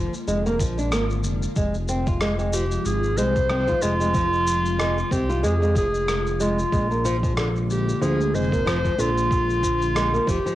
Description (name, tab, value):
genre	organic downtempo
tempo	93 BPM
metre	4/4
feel	swing 57% on 16ths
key	F dorian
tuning	A4 = 436 Hz
part	ethereal airy pad	sustained chords	0.0-10.6 s	C3 to G4	-32 LUFS	left 1 dB	ensemble chorus, built-in reverb, sidechain pumping, cassette tape
part	flamenco guitar	arpeggios	0.0-10.6 s	D3 to F4	-27 LUFS	equal	cassette tape, analog delay
part	smooth synth bass	bass	0.0-10.4 s	F1 to F2	-25 LUFS	equal	none
part	electronic shaker and rim click	drums	0.1-10.6 s	none	-32 LUFS	equal	none
part	electronic kick drum	drums	0.6-10.4 s	none	-26 LUFS	equal	none
part	mellow clarinet	melody	2.5-10.6 s	F4 to C5	-24 LUFS	equal	cassette tape, analog delay
room	moderate spring reverb, RT60 1.8 s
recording	home recording on cassette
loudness	-20 LUFS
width	side -14 dB against mid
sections	0.0-10.6 A section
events	none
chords	0.0 Bb7; 1.6 Fm; 6.7 Bb7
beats	0.28 0.92 | 1.56 2.21 2.86 3.50 | 4.15 4.79 5.44 6.08 | 6.73 7.37 8.02 8.66 | 9.31 9.95